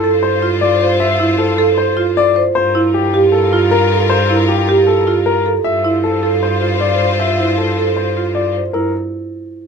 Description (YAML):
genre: classical, minimalist pattern music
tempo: 155 BPM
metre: 4/4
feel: straight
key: unclear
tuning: A4 = 440 Hz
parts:
  - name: clear concert grand piano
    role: melody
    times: 0.0-8.9 s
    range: G4 to E5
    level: -17 LUFS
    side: left 7 dB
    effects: none
  - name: rich studio string section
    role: sustained chords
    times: 0.0-8.5 s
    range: F4 to C5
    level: -20 LUFS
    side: left 3 dB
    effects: none
  - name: marimba with medium mallets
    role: arpeggios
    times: 0.0-8.9 s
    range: E4 to C5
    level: -16 LUFS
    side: right 5 dB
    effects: none
  - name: clear cello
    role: bass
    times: 0.0-8.9 s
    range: G2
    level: -20 LUFS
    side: right 1 dB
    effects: none
room: little or no reverb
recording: minimal, uncompressed stereo recording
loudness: -12 LUFS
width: side -6 dB against mid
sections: 0.0-8.7 A section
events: none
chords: 0.0 Dm7/G (rootless); 2.5 Gm9; 5.6 Dm7/G (rootless); 8.7 N.C.